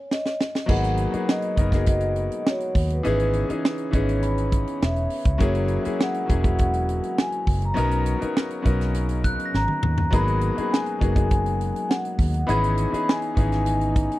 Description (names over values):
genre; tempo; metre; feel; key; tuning
lush 1970s-style soul; 102 BPM; 4/4; straight; unclear; A4 = 441 Hz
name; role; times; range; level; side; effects
vibraphone with soft mallets; melody; 0.0-14.2 s; B4 to B5; -28 LUFS; left 1 dB; none
tight funk drum kit; drums; 0.1-14.2 s; crash cymbal, hi-hat, kick drum, snare drum, toms; -23 LUFS; right 1 dB; none
clear grand piano; accompaniment; 0.7-14.2 s; E3 to A#4; -27 LUFS; left 3 dB; none
mellow French horn section; sustained chords; 0.7-14.2 s; B2 to F#4; -32 LUFS; right 2 dB; none
vintage muted fingered electric bass; bass; 0.7-14.1 s; E1 to D#2; -24 LUFS; equal; none
glockenspiel with soft plastic mallets; texture; 0.7-5.3, 9.2-13.6 s; B5 to A#6; -38 LUFS; equal; none
room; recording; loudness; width
studio reverb; dry, close 1970s-style studio recording; -20 LUFS; side -16 dB against mid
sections
0.7-14.2 A section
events
drum fill 0.0-0.7, 9.5-10.1; stop 0.0-0.7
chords
0.0 N.C.; 0.7 G#m9; 3.0 C#m9/G#; 5.4 F#9; 7.8 Bmaj9; 10.1 G#m9; 12.5 C#m9/G#